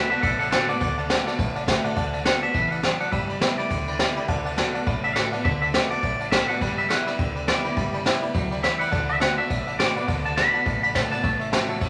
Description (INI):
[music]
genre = rockabilly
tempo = 207 BPM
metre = 4/4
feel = swing 59% on 8ths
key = D major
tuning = A4 = 439 Hz
[part]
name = twangy electric guitar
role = melody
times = 0.0-11.7 s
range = A4 to B5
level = -28 LUFS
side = equal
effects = spring reverb
[part]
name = picked steel-string acoustic guitar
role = accompaniment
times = 0.0-11.9 s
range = E2 to F#4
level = -32 LUFS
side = equal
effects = none
[part]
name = tack piano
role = accompaniment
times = 0.0-11.9 s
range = C#5 to B5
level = -34 LUFS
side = equal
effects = none
[part]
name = upright bass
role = bass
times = 0.1-11.9 s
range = E1 to D2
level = -36 LUFS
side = equal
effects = none
[part]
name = jazz brush drum kit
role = drums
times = 0.1-11.9 s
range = kick drum, ride cymbal, snare drum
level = -27 LUFS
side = equal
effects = none
[sound]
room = moderate large studio reverb, RT60 1.3 s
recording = none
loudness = -23 LUFS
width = mono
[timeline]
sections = 0.0-2.0 A section; 2.0-11.9 B section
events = clean electric guitar solo 0.0-2.0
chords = 0.0 D6; 3.1 G6; 4.3 D6; 6.6 G6; 8.9 D6; 11.2 A6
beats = 0.23 0.52 | 0.81 1.10 1.39 1.68 | 1.97 2.26 2.55 2.83 | 3.12 3.42 3.71 4.00 | 4.29 4.58 4.87 5.16 | 5.45 5.74 6.03 6.32 | 6.61 6.89 7.18 7.47 | 7.76 8.05 8.34 8.63 | 8.92 9.21 9.50 9.79 | 10.08 10.37 10.66 10.95 | 11.23 11.52 11.81